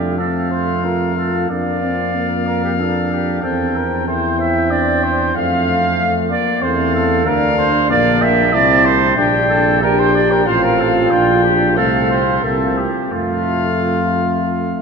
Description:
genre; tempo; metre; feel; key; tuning
classical, brass quintet; 93 BPM; 3/4; rubato; F major; A4 = 443 Hz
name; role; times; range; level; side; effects
bright trumpet; melody; 0.0-14.8 s; E5 to A5; -21 LUFS; left 8 dB; none
mellow trumpet; second line; 0.0-14.8 s; F4 to F5; -18 LUFS; right 4 dB; none
clear trombone; accompaniment; 0.0-14.8 s; A3 to E4; -24 LUFS; right 3 dB; none
warm French horn; accompaniment; 0.0-14.8 s; A3 to G4; -20 LUFS; left 2 dB; none
mellow tuba; bass; 0.0-14.8 s; A1 to F2; -20 LUFS; right 2 dB; none
room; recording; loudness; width
wet cathedral reverb, RT60 5.1 s; nothing above 10.8 kHz; -13 LUFS; side -5 dB against mid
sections
0.0-14.8 A section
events
none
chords
0.0 F; 1.5 Bbadd9/F; 3.4 C/E; 5.4 F; 7.3 Bb/D; 8.5 Am/C; 9.2 Gm/Bb; 10.5 F/A; 11.1 Gm7/Bb; 11.8 F/C; 12.4 C7; 13.1 F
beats
0.19 0.84 | 1.51 2.15 2.80 | 3.44 4.08 4.71 | 5.36 5.99 6.62 | 7.26 7.91 8.54 | 9.18 9.83 10.48 | 11.12 11.78 12.44 | 13.12 13.82 14.50

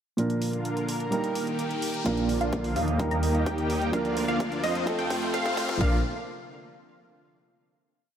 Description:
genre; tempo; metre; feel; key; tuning
EDM, festival progressive house; 128 BPM; 4/4; straight; Bb major; A4 = 440 Hz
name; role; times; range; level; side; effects
warm concert grand piano; accompaniment; 0.2-6.0 s; Bb2 to Bb4; -30 LUFS; right 2 dB; sidechain pumping
lush unison pad; sustained chords; 0.2-6.0 s; C3 to Bb4; -33 LUFS; equal; chorus, sidechain pumping
electronic hi-hat; drums; 0.2-5.8 s; none; -40 LUFS; right 1 dB; overdrive
riser; sound effects; 1.0-5.8 s; none; -41 LUFS; left 2 dB; none
wide unison pluck; arpeggios; 2.1-6.0 s; Eb5 to Bb5; -33 LUFS; equal; phaser, sidechain pumping, digital delay
big supersaw lead; riff; 2.1-6.0 s; A3 to Bb5; -31 LUFS; right 1 dB; phaser, sidechain pumping, low-pass filter, digital delay
wide detuned saw bass; bass; 2.1-6.0 s; Bb1 to F2; -31 LUFS; left 1 dB; chorus, sidechain pumping
electronic kick drum; drums; 2.1-5.9 s; none; -30 LUFS; left 1 dB; overdrive, high-pass filter on kick
room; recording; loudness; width
moderate lush hall reverb, RT60 2.0 s; high-pass filter; -25 LUFS; side -9 dB against mid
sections
0.2-2.1 intro; 2.1-5.8 build; 5.8-7.7 final chord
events
kick drops out 0.2-2.1; riser 1.0-2.1, 2.1-5.8; build-up 2.1-5.8; filter sweep on supersaw synth 2.1-5.8; filter sweep on synth pluck 2.1-5.8; filter sweep 2.1-5.8; drum fill 3.9-5.8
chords
0.2 Bb; 1.1 Eb; 2.1 Bb; 3.0 Eb; 3.9 Bb/D; 4.9 F; 5.8 Bb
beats
| 0.18 0.65 1.12 1.59 | 2.06 2.53 3.00 3.46 | 3.93 4.40 4.87 5.34 | 5.81

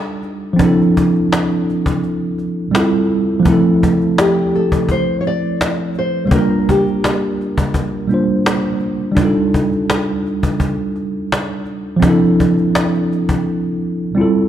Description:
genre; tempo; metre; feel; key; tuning
lo-fi hip hop; 84 BPM; 4/4; swing 56% on 16ths; F major; A4 = 440 Hz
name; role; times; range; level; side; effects
nylon-string guitar; melody; 0.0-8.1 s; G4 to D5; -20 LUFS; left 2 dB; tape echo
mellow tine electric piano; accompaniment; 0.0-14.5 s; F3 to C5; -15 LUFS; right 1 dB; medium stereo tremolo, cassette tape
cajon; drums; 0.2-13.4 s; none; -20 LUFS; left 1 dB; none
room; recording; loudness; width
moderate concert hall reverb, RT60 2.2 s; dark, warm production; -14 LUFS; side -10 dB against mid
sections
0.0-3.5 A section; 3.5-14.5 B section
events
break 2.0-3.5, 13.5-14.5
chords
0.0 Ebmaj9#11; 0.6 Dm9/F; 2.7 Fmaj9; 6.3 Bb6; 9.2 Ebmaj9#11; 12.0 Dm9/F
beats
| 0.60 1.31 2.02 2.74 | 3.45 4.17 4.88 5.60 | 6.31 7.03 7.74 8.45 | 9.17 9.88 10.60 11.31 | 12.03 12.74 13.45 14.17

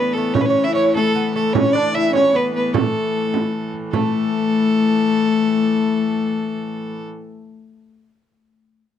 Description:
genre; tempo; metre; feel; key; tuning
medieval dance; 101 BPM (dotted quarters); 6/8; straight; A major; A4 = 440 Hz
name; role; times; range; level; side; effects
warm fiddle; melody; 0.0-7.1 s; A4 to E5; -21 LUFS; right 1 dB; none
lute; second line; 0.0-7.8 s; A3 to E4; -26 LUFS; right 9 dB; none
rich viola da gamba; second line; 0.0-7.1 s; A3 to E4; -20 LUFS; left 6 dB; none
rich hurdy-gurdy; drone; 0.0-7.1 s; A2 to E3; -28 LUFS; right 2 dB; none
frame drum; percussion; 0.3-4.1 s; none; -21 LUFS; right 8 dB; none
room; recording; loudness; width
little or no reverb; dry, close 1970s-style studio recording; -16 LUFS; side -9 dB against mid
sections
0.0-3.9 A section; 3.9-6.3 B section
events
none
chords
none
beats
| 0.36 0.96 | 1.55 2.15 | 2.75 3.34 | 3.94 4.53 | 5.12 5.72

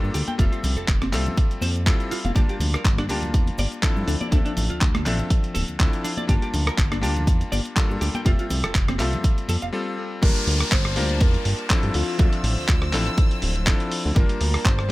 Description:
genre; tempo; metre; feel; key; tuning
nu-disco, nu disco; 122 BPM; 4/4; swing 54% on 16ths; G dorian; A4 = 443 Hz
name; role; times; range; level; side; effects
bright electric grand piano; accompaniment; 0.0-14.9 s; F3 to A5; -29 LUFS; left 2 dB; sidechain pumping, digital delay
fat analog bass; bass; 0.0-14.9 s; D1 to G2; -24 LUFS; equal; none
cabasa and congas; percussion; 0.0-9.7 s; none; -33 LUFS; left 2 dB; none
clean electric guitar; riff; 0.1-9.7 s; A3 to G5; -31 LUFS; right 1 dB; lush chorus, digital delay
dusty soul sampler-style drum kit; drums; 0.1-14.9 s; crash cymbal, handclaps, hi-hat, rim click; -28 LUFS; equal; none
electronic kick drum; drums; 0.4-14.8 s; none; -20 LUFS; equal; none
soft octave-layered synth lead; melody; 10.2-14.9 s; F4 to C5; -32 LUFS; left 1 dB; chorus, digital delay
rich studio violin section; sustained chords; 10.2-14.9 s; C5 to E6; -35 LUFS; left 1 dB; sidechain pumping
downlifter; sound effects; 10.2-14.2 s; none; -32 LUFS; left 1 dB; none
room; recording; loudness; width
little or no reverb; none; -19 LUFS; side -19 dB against mid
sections
0.0-10.2 A section; 10.2-14.9 B section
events
break 9.7-10.2; drop 10.2-14.9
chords
0.4 Fmaj7; 2.4 Gm9; 4.1 Dm9; 6.3 Gm9; 8.3 Fmaj7; 10.2 Gm9; 11.9 Dm9; 14.2 Gm9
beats
| 0.39 0.88 1.38 1.87 | 2.36 2.85 3.34 3.83 | 4.33 4.82 5.31 5.80 | 6.29 6.79 7.28 7.77 | 8.26 8.75 9.24 9.74 | 10.23 10.72 11.21 11.70 | 12.20 12.69 13.18 13.67 | 14.16 14.65

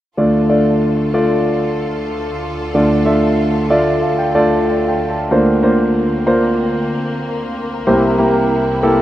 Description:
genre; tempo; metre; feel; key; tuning
pop; 94 BPM; 4/4; straight; D minor; A4 = 440 Hz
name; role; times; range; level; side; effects
clear grand piano; accompaniment; 0.2-9.0 s; C2 to A5; -13 LUFS; equal; none
clear studio string section; sustained chords; 0.2-9.0 s; C2 to A4; -24 LUFS; equal; none
room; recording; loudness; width
wet plate reverb, RT60 3.3 s; rough home demo mix; -13 LUFS; side -13 dB against mid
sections
0.2-9.0 A section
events
grand piano fill 3.4-5.3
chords
0.2 Dm; 5.3 Bbadd9/D; 7.9 C7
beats
| 0.18 0.82 1.46 2.10 | 2.74 3.38 4.02 4.66 | 5.30 5.94 6.58 7.22 | 7.87 8.51

